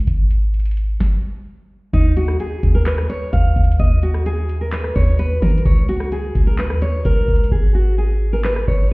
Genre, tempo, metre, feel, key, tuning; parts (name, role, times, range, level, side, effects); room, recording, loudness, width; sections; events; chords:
hip hop, trap; 129 BPM; 4/4; half-time; A4 = 441 Hz
warm 808-style bass; bass; 0.0-8.9 s; Ab1 to Eb3; -18 LUFS; equal
booming analog drum machine; drums; 0.0-8.9 s; handclaps, hi-hat, kick drum, rim click, snare drum; -17 LUFS; equal
nylon-string guitar; melody; 1.9-8.9 s; Eb4 to F5; -23 LUFS; equal; ping-pong delay
digital ambience; heard muffled through a wall, stone room reverb, EQ; -15 LUFS; side -25 dB against mid
0.0-1.9 A section; 1.9-8.9 B section
break 0.0-1.9; stop 1.0-1.9; hi-hats muted 7.5-8.9
0.1 N.C.; 5.7 Dbsus2; 7.5 N.C.